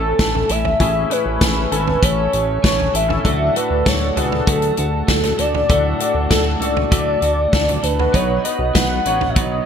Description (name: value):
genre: piano-driven pop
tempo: 98 BPM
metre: 4/4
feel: straight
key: unclear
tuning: A4 = 441 Hz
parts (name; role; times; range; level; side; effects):
- warm velvety synth lead; melody; 0.0-9.7 s; A4 to F#5; -20 LUFS; left 1 dB; chorus
- warm concert grand piano; accompaniment; 0.0-9.7 s; A2 to G#5; -24 LUFS; left 3 dB; analog chorus
- clean electric guitar; riff; 0.0-9.7 s; A2 to B4; -26 LUFS; right 7 dB; lush chorus
- chorused synth bass; bass; 0.0-9.6 s; G#1 to D2; -22 LUFS; equal; none
- natural country drum kit; drums; 0.2-9.5 s; hi-hat, kick drum, snare drum, toms; -19 LUFS; equal; gated reverb
room: light reverb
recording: bright 1980s-style digital production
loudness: -15 LUFS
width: side -8 dB against mid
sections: 0.0-9.7 A section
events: none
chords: 0.0 A; 3.2 D; 8.1 B